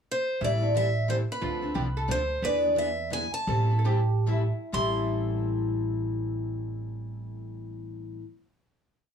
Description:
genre	acoustic string swing (jazz manouche)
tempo	124-179 BPM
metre	3/4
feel	swing 61% on 8ths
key	A minor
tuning	A4 = 440 Hz
part	picked steel-string acoustic guitar	melody	0.1-8.2 s	B4 to C6	-28 LUFS	equal	plate reverb
part	oud	second line	0.4-8.2 s	E4 to B4	-35 LUFS	right 2 dB	none
part	picked steel-string acoustic guitar	accompaniment	0.4-8.3 s	A2 to A4	-33 LUFS	left 7 dB	none
part	upright bass	bass	0.4-8.2 s	A1 to E2	-29 LUFS	right 2 dB	none
room	light reverb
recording	none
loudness	-25 LUFS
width	side -7 dB against mid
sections	0.0-0.4 pickup bar; 0.4-4.7 A section; 4.7-7.6 final chord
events	slowing down 2.4-4.7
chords	0.4 Am7; 1.4 Dm7; 2.4 E7; 3.5 Am7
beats	0.09 | 0.43 0.76 1.10 | 1.43 1.76 2.10 | 2.43 2.77 3.12 | 3.48 3.87 4.28 | 4.74 5.22 5.70 | 6.18 6.66 7.14

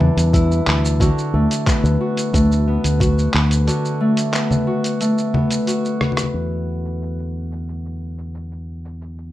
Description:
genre	folktronica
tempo	90 BPM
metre	4/4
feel	straight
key	unclear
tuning	A4 = 440 Hz
part	Celtic harp	arpeggios	0.0-9.3 s	E2 to F#4	-20 LUFS	left 1 dB	ping-pong delay
part	fingered electric bass with an envelope filter	bass	0.0-9.3 s	D2 to E2	-19 LUFS	equal	tube saturation
part	lo-fi sampler-style drum kit	drums	0.0-9.3 s	cabasa, congas, handclaps, hi-hat, rim click	-22 LUFS	equal	low-pass filter on perc, small room ambience, low-pass filter on snare, low-pass filter on hats
part	electronic kick drum	drums	0.3-3.1 s	none	-18 LUFS	equal	small room ambience
room	moderate studio reverb, RT60 0.6 s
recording	rough home demo mix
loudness	-16 LUFS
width	side -14 dB against mid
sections	0.0-6.3 A section; 6.3-9.3 B section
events	break 3.7-6.3; drum fill 6.0-6.3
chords	0.0 Em7; 1.0 Bm7/D; 6.3 N.C.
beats	0.34 | 1.01 1.67 2.34 3.01 | 3.67 4.34 5.01 5.67 | 6.34 7.01 7.67 8.34 | 9.01

